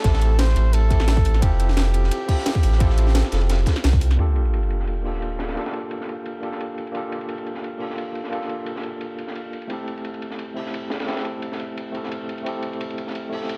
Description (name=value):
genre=liquid drum and bass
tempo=174 BPM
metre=4/4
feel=swing 54% on 16ths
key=G dorian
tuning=A4 = 440 Hz
part: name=breathy flugelhorn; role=melody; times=0.0-3.8 s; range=G4 to C5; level=-32 LUFS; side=equal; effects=digital delay
part: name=overdriven tine electric piano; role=accompaniment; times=0.0-13.6 s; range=A3 to A4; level=-32 LUFS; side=equal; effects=fast tremolo, delay
part: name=warm sub bass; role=bass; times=0.0-4.2 s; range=F1 to C2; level=-20 LUFS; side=equal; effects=none
part: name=crunchy breakbeat drum kit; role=drums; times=0.0-13.6 s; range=hi-hat, ride cymbal, snare drum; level=-36 LUFS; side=equal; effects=high-pass filter on cymbals, low-pass filter on cymbals, high-pass filter on hats, low-pass filter on hats, high-pass filter on snare, low-pass filter on snare, high-pass filter on room, low-pass filter on room
part: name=drum and bass drum kit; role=drums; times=0.0-4.2 s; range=hi-hat, snare drum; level=-30 LUFS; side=equal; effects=overdrive, low-pass filter on hats, low-pass filter on snare
part: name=electronic kick drum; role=drums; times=0.0-4.0 s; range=none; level=-22 LUFS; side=equal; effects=overdrive
part: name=sub drop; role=sound effects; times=4.2-5.6 s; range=none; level=-25 LUFS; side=equal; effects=none
room=studio reverb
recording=none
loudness=-23 LUFS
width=mono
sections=0.0-4.2 A section; 4.2-13.6 B section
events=drop 0.0-4.2; impact 4.2-5.6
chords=0.0 Am7; 1.4 Fmaj9; 4.2 Gm9; 9.7 Am7